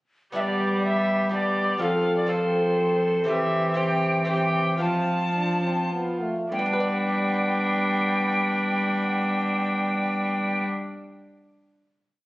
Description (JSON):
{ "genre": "classical, renaissance-style consort dance", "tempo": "99-124 BPM", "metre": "3/4", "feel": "straight", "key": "G mixolydian", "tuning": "A4 = 441 Hz", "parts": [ { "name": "lute", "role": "accompaniment", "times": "0.3-10.9 s", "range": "G2 to D5", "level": "-33 LUFS", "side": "equal", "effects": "none" }, { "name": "warm cello", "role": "bass", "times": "0.3-10.6 s", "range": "E3 to G3", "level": "-26 LUFS", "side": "equal", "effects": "none" }, { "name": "soprano recorder", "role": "melody", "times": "0.4-10.7 s", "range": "C5 to A5", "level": "-27 LUFS", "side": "equal", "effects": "none" }, { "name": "rich viola", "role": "second line", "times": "0.4-10.6 s", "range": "D4 to A4", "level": "-28 LUFS", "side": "equal", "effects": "none" }, { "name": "clear trombone", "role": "accompaniment", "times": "0.4-10.6 s", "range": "A3 to D4", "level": "-32 LUFS", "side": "left 1 dB", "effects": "none" } ], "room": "moderate stone room reverb, RT60 1.3 s", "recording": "recorded on a phone in the room, studio reverb", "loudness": "-22 LUFS", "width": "side -19 dB against mid", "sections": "0.4-6.5 A section; 6.5-10.1 final chord", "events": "slowing down 2.5-6.5", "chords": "0.4 G; 1.8 F; 3.3 C/E; 4.8 F; 6.5 G" }